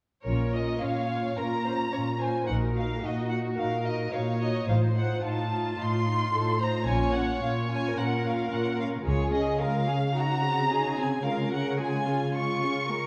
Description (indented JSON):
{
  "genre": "quick classical-period movement for string orchestra",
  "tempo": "109 BPM",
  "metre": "4/4",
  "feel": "straight",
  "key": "Bb minor, Db major from 9.1 s",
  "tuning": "A4 = 441 Hz",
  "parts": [
    { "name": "muted chamber violin section", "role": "melody", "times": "0.2-13.1 s", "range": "Db5 to Db6", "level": "-34 LUFS", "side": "equal", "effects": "none" },
    { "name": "muted chamber violin section", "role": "second line", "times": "0.3-13.1 s", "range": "F4 to Db5", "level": "-36 LUFS", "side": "equal", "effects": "none" },
    { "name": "muted chamber viola section", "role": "accompaniment", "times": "0.3-13.1 s", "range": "Ab3 to Ab4", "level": "-35 LUFS", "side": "equal", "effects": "none" },
    { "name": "muted chamber cello section", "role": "bass", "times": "0.3-13.1 s", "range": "A2 to Db3", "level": "-32 LUFS", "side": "equal", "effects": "none" },
    { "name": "muted chamber double bass section", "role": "bass", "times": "0.3-9.6 s", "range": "A1 to Db2", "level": "-32 LUFS", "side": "equal", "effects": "none" }
  ],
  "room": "wet recital hall reverb, RT60 1.7 s",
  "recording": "dark, warm production",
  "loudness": "-28 LUFS",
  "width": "mono",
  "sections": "0.3-13.1 A section",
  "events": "none",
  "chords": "0.3 Bbm; 2.5 Ebm/Bb; 4.7 F7/A; 6.9 Bbm; 9.1 Db; 10.2 Ab7/Db; 11.2 Db"
}